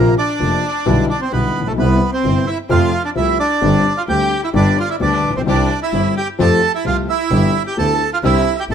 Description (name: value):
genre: tango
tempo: 130 BPM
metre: 4/4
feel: rubato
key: C major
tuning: A4 = 441 Hz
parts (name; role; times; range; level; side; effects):
- bandoneon; melody; 0.0-8.7 s; A3 to A5; -18 LUFS; right 4 dB; none
- warm violin; second line; 0.0-8.7 s; A3 to A4; -24 LUFS; left 2 dB; tape echo
- warm concert grand piano; accompaniment; 0.0-8.7 s; F1 to G4; -18 LUFS; left 4 dB; none
- clear double bass; bass; 0.0-8.7 s; F1 to F2; -19 LUFS; right 2 dB; none
- mellow clarinet; second line; 4.6-5.4 s; B4 to D5; -28 LUFS; left 2 dB; none
- clear symphonic string section; stabs; 5.5-8.7 s; A3 to G4; -29 LUFS; right 1 dB; none
room: moderate studio reverb, RT60 0.7 s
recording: none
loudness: -14 LUFS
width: side -8 dB against mid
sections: 0.0-8.7 A section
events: none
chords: 0.0 Bbsus2; 0.9 G6/B; 1.8 Cmaj7; 2.7 F; 3.6 Gsus4; 4.5 G; 5.5 C; 6.4 Fadd9; 7.3 G6; 8.2 Cadd9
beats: 0.40 0.86 1.32 | 1.78 2.24 2.70 3.16 | 3.62 4.08 4.54 5.01 | 5.47 5.93 6.40 6.86 | 7.32 7.78 8.23 8.69